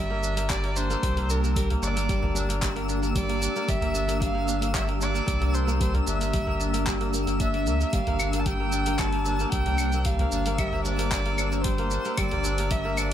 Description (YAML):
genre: organic downtempo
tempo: 113 BPM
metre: 4/4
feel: straight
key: G dorian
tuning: A4 = 435 Hz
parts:
  - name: rich kamancheh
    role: melody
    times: 0.0-13.1 s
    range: Bb4 to A5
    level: -31 LUFS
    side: equal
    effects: tape echo
  - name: ethereal airy pad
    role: sustained chords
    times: 0.4-13.1 s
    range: Bb3 to C5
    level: -32 LUFS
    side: left 1 dB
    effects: ensemble chorus, built-in reverb, sidechain pumping
  - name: kora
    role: arpeggios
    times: 0.0-13.1 s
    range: G3 to D5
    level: -32 LUFS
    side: equal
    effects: tape echo
  - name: warm sub bass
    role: bass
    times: 0.0-13.1 s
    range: G1 to D2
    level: -28 LUFS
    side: equal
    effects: sidechain pumping
  - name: twinkling granular texture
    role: texture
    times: 0.0-13.1 s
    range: E6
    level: -38 LUFS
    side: equal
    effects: built-in reverb
  - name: deep house drum kit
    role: drums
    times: 0.2-13.1 s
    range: claves, handclaps, hi-hat, shaker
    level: -33 LUFS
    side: equal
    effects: none
  - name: electronic kick drum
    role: drums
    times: 0.5-12.8 s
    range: none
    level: -30 LUFS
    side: equal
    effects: none
  - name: udu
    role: percussion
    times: 1.2-12.4 s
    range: none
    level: -32 LUFS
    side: equal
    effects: none
room: light reverb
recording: none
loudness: -23 LUFS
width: side -10 dB against mid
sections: 0.0-13.1 A section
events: none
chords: 0.0 Gm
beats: 0.50 1.03 | 1.56 2.09 2.62 3.15 | 3.68 4.21 4.74 5.28 | 5.81 6.34 6.87 7.40 | 7.93 8.46 8.99 9.52 | 10.05 10.59 11.12 11.65 | 12.18 12.71